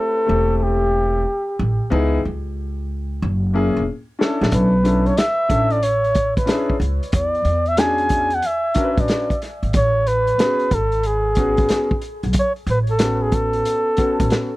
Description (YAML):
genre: hip hop, jazz-hop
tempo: 92 BPM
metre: 4/4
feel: swing 66% on 16ths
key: A major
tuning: A4 = 445 Hz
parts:
  - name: breathy flugelhorn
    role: melody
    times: 0.0-14.6 s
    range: G4 to G#5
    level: -20 LUFS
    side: equal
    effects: tape echo
  - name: warm concert grand piano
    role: accompaniment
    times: 0.0-14.5 s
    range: A3 to B4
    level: -22 LUFS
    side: left 2 dB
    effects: none
  - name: upright bass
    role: bass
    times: 0.3-14.3 s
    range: E1 to A2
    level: -21 LUFS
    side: equal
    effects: none
  - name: vintage drum kit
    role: drums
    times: 4.2-14.5 s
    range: hi-hat, kick drum, snare drum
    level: -21 LUFS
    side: equal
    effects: none
room: little or no reverb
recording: dry, close 1970s-style studio recording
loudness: -16 LUFS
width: side -18 dB against mid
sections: 0.0-14.6 A section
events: drum fill 3.9-4.5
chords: 0.0 Fmaj7 (rootless); 1.9 C#m7; 3.2 F#7; 4.5 Bm11; 7.1 E13; 9.7 Amaj13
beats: 0.61 1.26 | 1.92 2.57 3.22 3.87 | 4.53 5.18 5.83 6.48 | 7.13 7.79 8.44 9.09 | 9.74 10.39 11.05 11.70 | 12.35 13.00 13.65 14.31